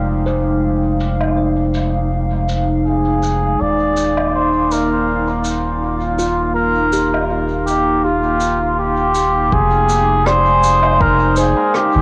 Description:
ambient dub; 81 BPM; 4/4; swing 55% on 16ths; F dorian; A4 = 440 Hz
warbly tape-like pad; sustained chords; 0.0-12.0 s; Ab3 to G5; -23 LUFS; equal; chorus, built-in reverb, cassette tape
kalimba; arpeggios; 0.0-12.0 s; F4 to G5; -28 LUFS; equal; low-pass filter, cassette tape, tape echo
soft dub sub bass; bass; 0.0-12.0 s; Eb1 to Ab1; -22 LUFS; equal
shaker, woodblock and rim click; drums; 0.3-11.9 s; -30 LUFS; equal; low-pass filter on snare, cassette tape, low-pass filter on perc, low-pass filter on room, dub echo
trumpet with cup mute; melody; 2.9-12.0 s; F4 to D5; -19 LUFS; equal; cassette tape, dub echo
electronic kick drum; drums; 9.5-11.2 s; -23 LUFS; equal; cassette tape
moderate spring reverb, RT60 2.6 s; home recording on cassette; -16 LUFS; mono
0.0-9.5 A section; 9.5-12.0 B section
filter sweep on drum 0.0-9.5
0.0 Fm9; 3.6 Eb69; 9.5 Fm9
| 0.63 1.38 2.12 2.86 | 3.60 4.34 5.08 5.82 | 6.56 7.30 8.04 8.78 | 9.52 10.26 11.01 11.74

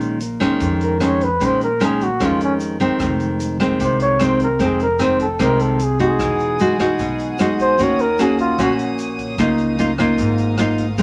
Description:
bossa nova; 150 BPM; 4/4; straight; Db major; A4 = 440 Hz
nylon-string guitar; accompaniment; 0.0-11.0 s; F2 to Gb4; -20 LUFS; equal
upright bass; bass; 0.0-11.0 s; E1 to F2; -31 LUFS; equal
swinging big-band drum kit; drums; 0.0-11.0 s; hi-hat, kick drum, rim click; -34 LUFS; equal
tube shaker; percussion; 0.0-11.0 s; -46 LUFS; equal
mellow flugelhorn; melody; 0.8-8.7 s; Db4 to Db5; -22 LUFS; equal
warm symphonic violin section; sustained chords; 6.2-11.0 s; C4 to D#6; -32 LUFS; equal
moderate studio reverb, RT60 0.9 s; faint mains hum; -18 LUFS; mono
0.0-11.0 A section
flugelhorn solo 0.0-11.0
0.0 Bbm11; 3.0 Fm7; 6.2 Emaj9; 7.8 Ebm7; 9.4 Db69
0.20 0.60 1.00 | 1.40 1.80 2.20 2.60 | 3.00 3.40 3.80 4.20 | 4.59 4.99 5.39 5.79 | 6.19 6.59 6.99 7.39 | 7.79 8.19 8.59 8.98 | 9.38 9.78 10.18 10.58 | 10.98

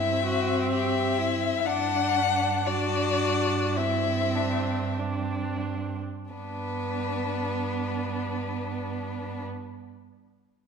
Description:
classical, slow romantic movement for string quartet; 42-66 BPM; 4/4; rubato; G major; A4 = 440 Hz
rich violin; melody; 0.0-9.4 s; B4 to F#5; -29 LUFS; left 6 dB
rich violin; second line; 0.0-9.4 s; C4 to G4; -32 LUFS; left 3 dB
rich viola; accompaniment; 0.0-9.4 s; B3 to D4; -31 LUFS; right 2 dB
warm cello; bass; 0.0-9.4 s; G2; -32 LUFS; right 5 dB
wet concert hall reverb, RT60 1.7 s; minimal, uncompressed stereo recording; -25 LUFS; side -6 dB against mid
0.0-6.3 A section; 6.3-10.7 B section
slowing down 0.0-6.3
0.0 C/G; 1.7 D7/G; 6.3 G
0.72 | 1.66 2.66 3.77 4.98 | 6.32 7.57 8.85

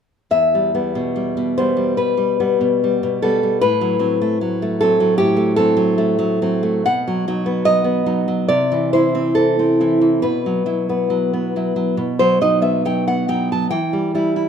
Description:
romantic piece for solo classical guitar; 66-78 BPM; 4/4; rubato; E minor; A4 = 440 Hz
nylon-string guitar; solo; 0.3-14.5 s; E2 to A5; -15 LUFS; equal
light reverb; minimal, uncompressed stereo recording; -15 LUFS; side -7 dB against mid
0.3-14.5 A section
0.3 Em; 3.6 F#dim/A; 6.9 B; 8.5 C; 10.2 Bsus4; 12.0 B; 13.7 Em
| 0.32 1.18 1.99 2.82 | 3.64 4.43 5.20 5.99 | 6.87 7.67 8.49 9.35 | 10.23 11.12 11.99 12.85 | 13.74

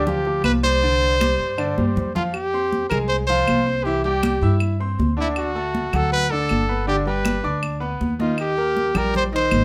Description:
latin, salsa; 159 BPM; 4/4; straight; C minor; A4 = 439 Hz
clear trumpet; melody; 0.0-9.6 s; E4 to C5; -24 LUFS; equal
clear concert grand piano; accompaniment; 0.0-9.6 s; D3 to E6; -28 LUFS; equal
upright bass; bass; 0.0-9.6 s; G1 to G2; -27 LUFS; equal
congas; percussion; 0.1-9.6 s; -28 LUFS; equal
claves; percussion; 0.4-9.6 s; -33 LUFS; equal
moderate studio reverb, RT60 0.6 s; -21 LUFS; mono
0.0-2.3 A section; 2.3-9.6 B section
drum fill 1.8-2.3
0.0 G5; 2.3 Fmadd9; 3.9 C; 5.4 D; 6.9 G; 8.4 Eb
0.06 0.44 | 0.82 1.20 1.58 1.96 | 2.34 2.72 3.09 3.47 | 3.85 4.23 4.61 4.99 | 5.36 5.74 6.12 6.50 | 6.87 7.25 7.63 8.01 | 8.39 8.76 9.14 9.52

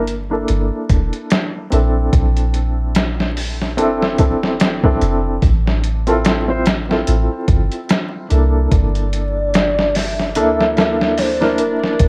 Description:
trip hop; 73 BPM; 4/4; swing 57% on 16ths; G dorian; A4 = 440 Hz
felt-muted upright piano; accompaniment; 0.0-12.1 s; Bb3 to C5; -22 LUFS; equal; tremolo, low-pass filter
soft 808-style bass; bass; 0.0-12.1 s; D1 to D2; -21 LUFS; equal
trip hop sampler-style drum kit; drums; 0.1-12.1 s; hi-hat, kick drum, snare drum; -20 LUFS; equal; overdrive
pure breathy sine lead; melody; 8.7-12.1 s; Bb4 to E5; -22 LUFS; equal; subtle chorus, tape echo
bowed-like drone; texture; 9.4-12.1 s; D4; -33 LUFS; equal
little or no reverb; worn, warbling old tape, cassette tape, vinyl crackle, warbly pitch drift; -17 LUFS; mono
0.0-12.1 A section
filter sweep on felt piano 0.0-12.1
0.0 Gm69; 2.1 Bbmaj9#11; 5.4 Dm7/A; 8.7 Gm69
0.49 1.31 | 2.14 2.96 3.78 4.60 | 5.42 6.25 7.07 7.89 | 8.71 9.53 10.36 11.18 | 12.00

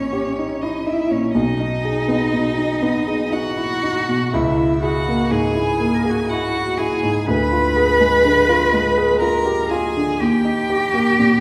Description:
classical, slow romantic movement for piano trio; 61 BPM; 3/4; rubato; G# minor; A4 = 440 Hz
rich violin; melody; 0.0-11.4 s; C#5 to B5; -28 LUFS; equal
rich cello; second line; 0.0-11.4 s; C#4 to B4; -22 LUFS; equal
clear grand piano; accompaniment; 0.0-11.4 s; A#1 to G#4; -22 LUFS; equal
wet recital hall reverb, RT60 1.4 s; heard from further back in the room; -18 LUFS; mono
0.0-11.4 A section
0.0 D#7/A#; 1.3 G#m/B; 4.3 A#m7b5/C#; 7.3 Ddim7; 10.2 D#
0.36 | 1.34 2.33 3.32 | 4.33 5.30 6.29 | 7.27 8.24 9.20 | 10.20 11.20

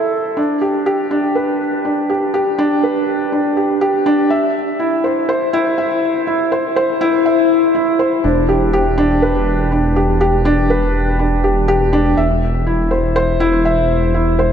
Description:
piano and strings electronica; 122 BPM; 4/4; straight; A4 = 440 Hz
felt-muted upright piano; riff; 0.0-14.5 s; D4 to E5; -14 LUFS; equal; ping-pong delay
dark detuned saw bass; bass; 8.2-14.5 s; E1; -17 LUFS; equal
wet huge ambient reverb, RT60 5.0 s; -13 LUFS; side -8 dB against mid
0.0-8.2 A section; 8.2-14.5 B section
build-up 0.0-8.2; drop 8.2-14.5
0.4 Dsus4; 4.3 C/E; 8.2 Em7; 12.2 Am/E (rootless)
| 0.37 0.86 1.36 1.85 | 2.34 2.83 3.32 3.82 | 4.31 4.80 5.29 5.78 | 6.28 6.77 7.26 7.75 | 8.24 8.73 9.23 9.72 | 10.21 10.70 11.19 11.69 | 12.18 12.67 13.16 13.65 | 14.14

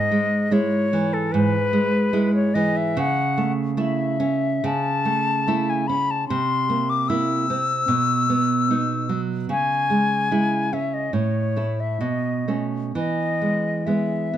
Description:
romantic duo for flute and classical guitar; 63-76 BPM; 4/4; rubato; E major; A4 = 440 Hz
silver concert flute; melody; 0.0-14.4 s; A4 to E6; -23 LUFS; left 4 dB
nylon-string guitar; accompaniment; 0.0-14.4 s; G#2 to E4; -22 LUFS; right 3 dB
light reverb; close, detailed microphones; -19 LUFS; side -11 dB against mid
0.0-14.4 A section
0.0 E/G#; 3.0 A/C#; 6.3 C7; 7.9 B; 9.5 C#m; 11.1 A; 12.0 B9; 12.9 E
0.52 1.33 2.14 | 2.97 3.78 4.64 5.47 | 6.29 7.08 7.88 8.70 | 9.50 10.32 11.15 12.02 | 12.95 13.87

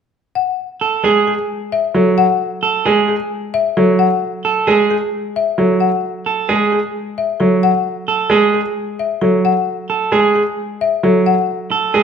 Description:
classical, minimalist pattern music; 132 BPM; 4/4; straight; F# minor; A4 = 440 Hz
folk marimba with medium hard mallets; melody; 0.4-11.6 s; G#4 to F#5; -18 LUFS; left 8 dB
electric guitar at the edge of break-up; arpeggios; 0.8-12.0 s; G#4 to A4; -16 LUFS; right 5 dB
bright baby grand piano; accompaniment; 1.0-12.0 s; F#3 to G#3; -17 LUFS; right 3 dB
wet recital hall reverb, RT60 1.4 s; -14 LUFS; side -7 dB against mid
0.4-12.0 A section
0.4 F#madd9
| 0.35 0.81 1.26 1.72 | 2.17 2.63 3.08 3.54 | 3.99 4.44 4.90 5.35 | 5.81 6.26 6.72 7.17 | 7.63 8.08 8.54 8.99 | 9.44 9.90 10.35 10.81 | 11.26 11.72

